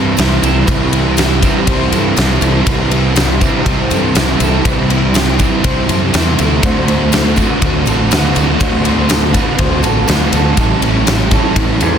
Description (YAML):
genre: rock, shoegaze and dream pop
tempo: 121 BPM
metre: 4/4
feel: straight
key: unclear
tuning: A4 = 441 Hz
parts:
  - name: electric guitar through a small old amp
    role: arpeggios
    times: 0.0-12.0 s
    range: G4 to C5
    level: -22 LUFS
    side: equal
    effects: wide subtle chorus, slapback echo
  - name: overdriven electric guitar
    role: riff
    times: 0.0-12.0 s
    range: A2 to F#4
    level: -18 LUFS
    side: left 12 dB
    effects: wide subtle chorus
  - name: overdriven electric guitar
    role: riff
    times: 0.0-12.0 s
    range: A2 to F#4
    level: -16 LUFS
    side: right 10 dB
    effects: reverse reverb
  - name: growling fingered electric bass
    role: bass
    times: 0.0-12.0 s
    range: A1 to G2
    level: -16 LUFS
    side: equal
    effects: overdrive
  - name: huge arena drum kit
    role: drums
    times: 0.2-11.9 s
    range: kick drum, ride cymbal, snare drum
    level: -16 LUFS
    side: left 1 dB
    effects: none
  - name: tambourine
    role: percussion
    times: 0.2-11.9 s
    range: none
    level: -31 LUFS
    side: right 9 dB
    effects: none
room: small room ambience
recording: dense, heavily limited modern master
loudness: -10 LUFS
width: side -8 dB against mid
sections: 0.0-12.0 A section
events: none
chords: 0.0 Cmaj7; 6.6 D7; 10.6 A5